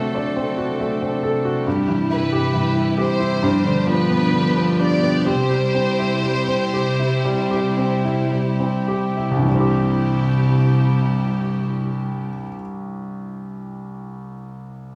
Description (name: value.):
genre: pop.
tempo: 52-69 BPM.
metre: 4/4.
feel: straight.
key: C major.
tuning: A4 = 438 Hz.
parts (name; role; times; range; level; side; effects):
clear concert grand piano; accompaniment; 0.0-15.0 s; C2 to D5; -23 LUFS; equal; none.
warm studio string section; sustained chords; 0.0-12.4 s; G2 to A4; -25 LUFS; equal; none.
warm studio violin section; melody; 2.1-8.3 s; B4 to D5; -27 LUFS; equal; none.
room: wet large studio reverb, RT60 0.9 s.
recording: band playing live in one room, small room ambience.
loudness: -20 LUFS.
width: mono.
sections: 0.0-9.5 A section; 9.5-14.0 B section.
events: slowing down 1.7-9.5.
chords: 0.0 D7; 1.7 C/G; 3.4 G7; 5.3 C.